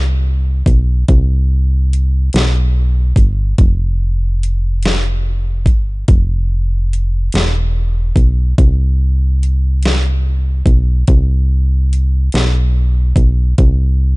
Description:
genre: slow six-eight R&B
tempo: 48 BPM (dotted quarters)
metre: 6/8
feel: straight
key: C major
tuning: A4 = 440 Hz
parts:
  - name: solid FM bass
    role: bass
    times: 0.0-14.2 s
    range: E1 to C2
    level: -13 LUFS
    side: equal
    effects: none
  - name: smooth R&B drum kit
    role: drums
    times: 0.7-13.8 s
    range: hi-hat, kick drum, snare drum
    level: -13 LUFS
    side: equal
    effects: none
room: little or no reverb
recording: dark, warm production, nothing above 10.8 kHz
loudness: -12 LUFS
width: side -24 dB against mid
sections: 0.0-14.2 A section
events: none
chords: none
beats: | 1.09 2.34 | 3.59 4.84 | 6.09 7.34 | 8.59 9.84 | 11.09 12.34 | 13.59

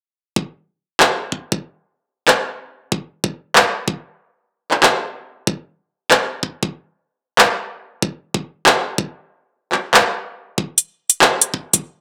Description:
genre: glitch hop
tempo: 94 BPM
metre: 4/4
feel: swing 62% on 16ths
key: none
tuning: none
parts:
  - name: electronic kick drum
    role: drums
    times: 0.4-11.8 s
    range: none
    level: -22 LUFS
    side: equal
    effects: high-pass filter on kick, high-pass filter on room
  - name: drum and bass drum kit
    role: drums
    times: 1.0-11.8 s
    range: handclaps, hi-hat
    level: -14 LUFS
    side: equal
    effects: none
room: moderate digital room reverb, RT60 1.1 s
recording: none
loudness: -18 LUFS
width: mono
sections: 0.4-12.0 A section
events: none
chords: none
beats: | 0.37 1.01 1.64 2.28 | 2.92 3.56 4.20 4.83 | 5.47 6.11 6.75 7.39 | 8.03 8.66 9.30 9.94 | 10.58 11.22

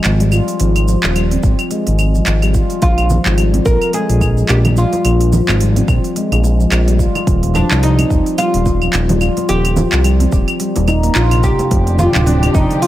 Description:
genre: organic downtempo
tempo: 108 BPM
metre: 4/4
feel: swing 57% on 16ths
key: unclear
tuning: A4 = 440 Hz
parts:
  - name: handpan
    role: arpeggios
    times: 0.0-12.9 s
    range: C3 to F4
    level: -18 LUFS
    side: left 1 dB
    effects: tape echo
  - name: smooth synth bass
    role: bass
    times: 0.0-12.7 s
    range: D1 to C2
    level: -14 LUFS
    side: equal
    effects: tube saturation, sidechain pumping
  - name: organic electronic drum kit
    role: drums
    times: 0.0-12.9 s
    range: cabasa, claves, handclaps, hi-hat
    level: -21 LUFS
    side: equal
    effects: overdrive
  - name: electronic kick drum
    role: drums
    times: 1.4-12.7 s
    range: none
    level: -16 LUFS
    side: equal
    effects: none
  - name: oud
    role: melody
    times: 2.8-12.9 s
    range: D4 to Bb4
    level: -19 LUFS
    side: equal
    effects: tape echo
  - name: congas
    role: percussion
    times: 3.1-12.5 s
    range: none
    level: -22 LUFS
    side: right 2 dB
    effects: none
  - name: muted studio string section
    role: sustained chords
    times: 11.7-12.9 s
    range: F3 to G4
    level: -22 LUFS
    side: equal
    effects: vintage 12-bit sampler grit, sidechain pumping
room: light reverb, small room ambience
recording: none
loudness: -11 LUFS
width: side -14 dB against mid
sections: 0.0-11.7 A section; 11.7-12.9 B section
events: none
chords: 0.0 Abmaj7(no3); 2.8 Bb5; 7.3 Eb69; 11.7 Fm69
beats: 0.05 | 0.60 1.16 1.71 2.27 | 2.83 3.38 3.94 4.49 | 5.05 5.60 6.16 6.71 | 7.27 7.83 8.38 8.94 | 9.49 10.05 10.60 11.16 | 11.71 12.27 12.82

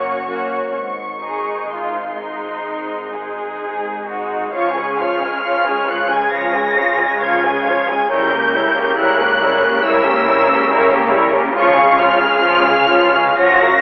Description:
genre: classical, slow romantic movement for string orchestra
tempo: 61-71 BPM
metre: 4/4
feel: rubato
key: Db major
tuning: A4 = 440 Hz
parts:
  - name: dark studio violin section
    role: melody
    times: 0.0-13.8 s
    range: C6 to Bb6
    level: -18 LUFS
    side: equal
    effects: none
  - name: warm studio violin section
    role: second line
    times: 0.0-13.8 s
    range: Eb4 to Ab5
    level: -17 LUFS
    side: equal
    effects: none
  - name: warm studio viola section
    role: accompaniment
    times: 0.0-13.8 s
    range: F3 to Gb4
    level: -19 LUFS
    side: equal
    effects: none
  - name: warm studio cello section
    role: bass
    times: 0.0-13.8 s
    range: Gb2 to Db3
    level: -23 LUFS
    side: equal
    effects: none
  - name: warm studio double bass section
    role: bass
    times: 0.0-13.8 s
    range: Gb1 to Db2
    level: -33 LUFS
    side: equal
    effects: none
room: wet scoring stage reverb, RT60 2.1 s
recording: telephone sound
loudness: -13 LUFS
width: side -30 dB against mid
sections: 0.0-4.5 A section; 4.5-13.8 B section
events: none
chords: 0.0 Gb; 0.7 Ab; 4.5 Db; 8.1 Dbdim7; 11.6 Db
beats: | 0.74 1.70 2.67 3.61 | 4.53 5.45 6.34 7.23 | 8.12 8.98 9.85 10.71 | 11.56 12.43 13.38

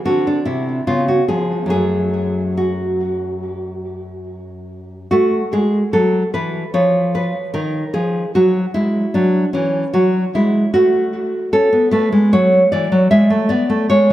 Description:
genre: classical, baroque-style dance for nylon-string guitar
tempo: 69-77 BPM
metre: 4/4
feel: rubato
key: F# minor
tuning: A4 = 440 Hz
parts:
  - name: nylon-string guitar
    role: solo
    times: 0.0-14.1 s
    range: F#2 to E5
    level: -14 LUFS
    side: equal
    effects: tape echo
room: moderate recital hall reverb, RT60 1.4 s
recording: none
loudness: -14 LUFS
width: side -14 dB against mid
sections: 0.0-5.1 A section; 5.1-14.1 B section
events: none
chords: 0.1 Cadd9; 0.9 C#7; 1.7 F#m; 6.7 C#13; 8.3 F#m; 11.5 A; 13.1 E13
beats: 0.05 0.88 | 1.72 2.58 3.44 4.28 | 5.12 5.93 6.73 7.54 | 8.34 9.15 9.95 10.75 | 11.54 12.33 13.13 13.92

